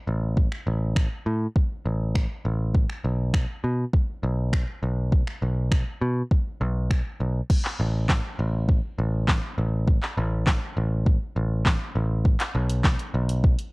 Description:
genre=dance-pop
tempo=101 BPM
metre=4/4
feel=straight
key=unclear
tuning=A4 = 441 Hz
part: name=picked electric bass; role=bass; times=0.1-13.5 s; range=A1 to B2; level=-24 LUFS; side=equal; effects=tube saturation, sidechain pumping
part: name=smooth R&B drum kit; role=drums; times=0.4-13.7 s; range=crash cymbal, finger snaps, handclaps, hi-hat, kick drum, snare drum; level=-22 LUFS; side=equal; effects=none
room=little or no reverb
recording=dry, gritty hardware recording, cassette tape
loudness=-22 LUFS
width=side -29 dB against mid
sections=0.0-7.5 A section; 7.5-13.7 B section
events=none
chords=none

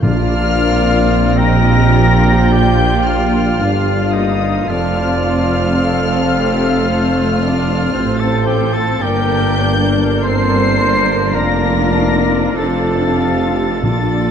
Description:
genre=classical, slow romantic movement for symphony orchestra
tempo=42-57 BPM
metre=4/4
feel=rubato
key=Bb major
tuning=A4 = 441 Hz
part: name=muted studio violin section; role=melody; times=0.0-14.3 s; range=Eb6 to C7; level=-23 LUFS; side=left 5 dB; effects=none
part: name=clear oboe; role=second line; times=0.0-14.3 s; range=Eb4 to C5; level=-24 LUFS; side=right 2 dB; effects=none
part: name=mellow hollow silver concert flute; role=second line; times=0.0-14.3 s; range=Eb5 to C6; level=-24 LUFS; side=left 1 dB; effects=none
part: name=muted studio violin section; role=second line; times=0.0-14.3 s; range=D4 to F5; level=-25 LUFS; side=left 4 dB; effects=none
part: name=warm clarinet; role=second line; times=0.0-14.3 s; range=Bb4 to G5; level=-24 LUFS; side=left 1 dB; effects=none
part: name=muted studio viola section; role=accompaniment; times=0.0-14.3 s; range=A3 to Bb4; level=-22 LUFS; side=left 1 dB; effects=none
part: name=mellow French horn section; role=sustained chords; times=0.0-14.3 s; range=F3 to F4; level=-20 LUFS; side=left 4 dB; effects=none
part: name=mellow tuba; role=bass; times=0.0-14.3 s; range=F1 to Bb1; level=-22 LUFS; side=right 3 dB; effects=none
part: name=muted studio double bass section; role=bass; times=0.0-14.3 s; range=F1 to Bb1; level=-19 LUFS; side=right 3 dB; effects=none
part: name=muted symphonic cello section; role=bass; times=0.0-14.3 s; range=F2 to Bb2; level=-21 LUFS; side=right 2 dB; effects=none
part: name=timpani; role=percussion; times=0.0-1.9, 13.8-14.3 s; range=Bb2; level=-19 LUFS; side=equal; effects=none
room=moderate scoring stage reverb, RT60 2.1 s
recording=dark, warm production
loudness=-12 LUFS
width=side -8 dB against mid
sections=0.0-14.3 A section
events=none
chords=0.0 Bb; 4.7 F; 9.0 Gm; 11.3 Bb/F; 12.6 F

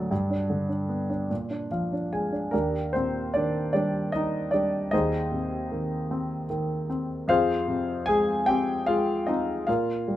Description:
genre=classical, lyrical solo piano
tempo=50 BPM (dotted quarters)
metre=6/8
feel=rubato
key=Eb major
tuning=A4 = 438 Hz
part: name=dark grand piano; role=solo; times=0.0-10.2 s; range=D2 to Ab5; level=-24 LUFS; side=equal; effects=none
room=light reverb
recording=minimal, uncompressed stereo recording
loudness=-24 LUFS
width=side -13 dB against mid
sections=0.0-2.5 A section; 2.5-10.2 B section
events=grand piano fill 1.3-2.5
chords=0.1 Gmaj7; 1.3 Bb7; 2.5 Ebmaj7; 4.9 Ab/Eb; 7.3 Fm

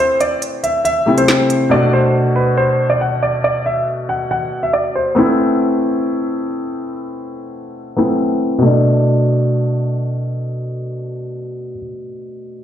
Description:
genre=hip hop, drill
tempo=139 BPM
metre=4/4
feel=half-time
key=B phrygian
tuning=A4 = 444 Hz
part: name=warm baby grand piano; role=melody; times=0.0-5.1 s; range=B4 to F#5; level=-17 LUFS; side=right 1 dB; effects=low-pass filter, tape echo
part: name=felt-muted upright piano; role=accompaniment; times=0.0-12.6 s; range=B2 to F#4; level=-16 LUFS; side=left 1 dB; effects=low-pass filter
part: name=drill drum kit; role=drums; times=0.2-1.6 s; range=handclaps, hi-hat, snare drum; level=-18 LUFS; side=equal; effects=none
room=light reverb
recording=played on a big sound system in a bare room, stone room reverb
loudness=-14 LUFS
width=side -10 dB against mid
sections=0.0-8.6 A section; 8.6-12.1 B section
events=break 0.0-1.7; filter sweep 0.0-8.6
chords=0.0 Amadd9; 1.7 Bm7; 5.2 Amadd9; 8.6 Bm7

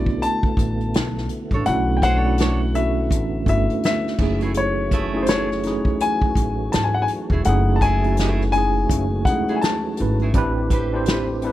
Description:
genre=R&B, neo-soul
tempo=83 BPM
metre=4/4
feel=swing 62% on 16ths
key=B minor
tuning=A4 = 440 Hz
part: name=warm grand piano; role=melody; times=0.0-10.2 s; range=C5 to A5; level=-24 LUFS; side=left 4 dB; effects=none
part: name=tine electric piano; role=accompaniment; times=0.0-11.5 s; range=G#3 to C5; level=-24 LUFS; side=right 3 dB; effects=overdrive, fast stereo tremolo
part: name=tonewheel organ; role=sustained chords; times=0.0-11.5 s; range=D3 to G4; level=-32 LUFS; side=left 1 dB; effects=overdrive, chorus vibrato, slow rotary speaker
part: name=upright bass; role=bass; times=0.0-11.5 s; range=E1 to B1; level=-23 LUFS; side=equal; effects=none
part: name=unplugged drum kit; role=drums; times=0.1-11.5 s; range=crash cymbal, hi-hat, kick drum, snare drum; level=-23 LUFS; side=equal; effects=none
part: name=nylon-string guitar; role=second line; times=1.5-11.3 s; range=A3 to C#5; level=-29 LUFS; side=right 4 dB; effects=none
part: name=warm trombone section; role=stabs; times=8.9-9.7 s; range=C#3 to C#4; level=-31 LUFS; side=left 12 dB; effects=none
room=studio ambience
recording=none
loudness=-18 LUFS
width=side -14 dB against mid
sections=0.0-11.5 A section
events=band accent 7.4-10.3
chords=0.0 Bm9; 4.2 F#m9; 10.3 Am9

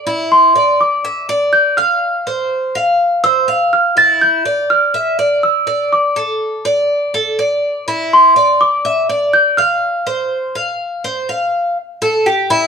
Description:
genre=latin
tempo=123 BPM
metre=4/4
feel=straight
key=D minor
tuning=A4 = 437 Hz
part: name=Cuban tres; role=arpeggios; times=0.0-12.7 s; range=E4 to F5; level=-16 LUFS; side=equal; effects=none
part: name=celesta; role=melody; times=0.3-10.5 s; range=C6 to A6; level=-12 LUFS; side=right 1 dB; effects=none
room=moderate large studio reverb, RT60 0.9 s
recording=band playing live in one room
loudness=-12 LUFS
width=side -6 dB against mid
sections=0.0-11.8 A section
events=none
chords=0.1 Dmadd9; 2.0 Csus4; 4.0 Dmadd9; 5.9 Asus4; 7.9 Dmadd9; 9.8 Csus4; 11.8 N.C.

